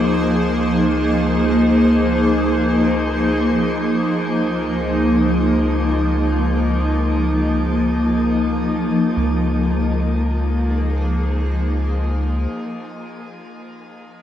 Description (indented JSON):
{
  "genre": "ambient",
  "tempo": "free time",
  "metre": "none",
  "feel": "none",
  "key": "Db major",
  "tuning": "A4 = 440 Hz",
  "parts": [
    { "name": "granular cloud pad", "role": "sustained chords", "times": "0.0-12.5 s", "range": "F3 to C5", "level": "-17 LUFS", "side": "equal", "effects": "built-in reverb" },
    { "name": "round analog bass", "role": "bass", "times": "0.0-12.5 s", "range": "Db2", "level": "-22 LUFS", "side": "equal", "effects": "none" }
  ],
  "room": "wet shimmer reverb, RT60 8.0 s",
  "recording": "none",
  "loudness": "-16 LUFS",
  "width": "side -10 dB against mid",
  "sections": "0.0-9.2 A section; 9.2-11.7 B section",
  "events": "none",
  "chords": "0.0 Dbmaj7"
}